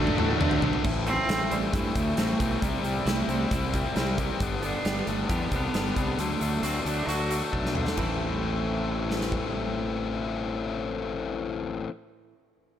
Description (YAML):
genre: quiet-loud alternative rock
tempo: 134 BPM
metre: 4/4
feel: straight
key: A dorian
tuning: A4 = 444 Hz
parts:
  - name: bright cello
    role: melody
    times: 0.0-7.3 s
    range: G3 to F#4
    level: -31 LUFS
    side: right 2 dB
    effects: none
  - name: crunchy overdriven guitar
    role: riff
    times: 0.0-0.8 s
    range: D3 to D4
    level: -30 LUFS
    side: right 13 dB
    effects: none
  - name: high-gain distorted guitar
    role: riff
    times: 0.0-0.8 s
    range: D3 to D4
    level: -34 LUFS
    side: right 2 dB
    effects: distortion
  - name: tight distorted guitar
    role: riff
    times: 0.0-11.9 s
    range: G2 to E4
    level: -30 LUFS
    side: left 8 dB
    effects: distortion
  - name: fuzz fingered electric bass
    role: bass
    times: 0.0-11.8 s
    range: G1 to A2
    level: -32 LUFS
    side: equal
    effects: overdrive
  - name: huge arena drum kit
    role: drums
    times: 0.1-9.4 s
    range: crash cymbal, hi-hat, kick drum, ride cymbal, snare drum, toms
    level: -30 LUFS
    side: equal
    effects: none
  - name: clean electric guitar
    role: arpeggios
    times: 0.8-11.9 s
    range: G2 to G4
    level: -36 LUFS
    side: right 7 dB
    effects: analog delay
room: light reverb, studio ambience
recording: none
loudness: -25 LUFS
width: side -10 dB against mid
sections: 0.8-8.0 A section; 8.0-11.6 B section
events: drum fill 0.0-0.8, 7.5-8.0; cello solo 0.8-8.0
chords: 0.0 D; 0.8 Am; 2.6 C; 4.4 G; 6.2 D; 8.0 Am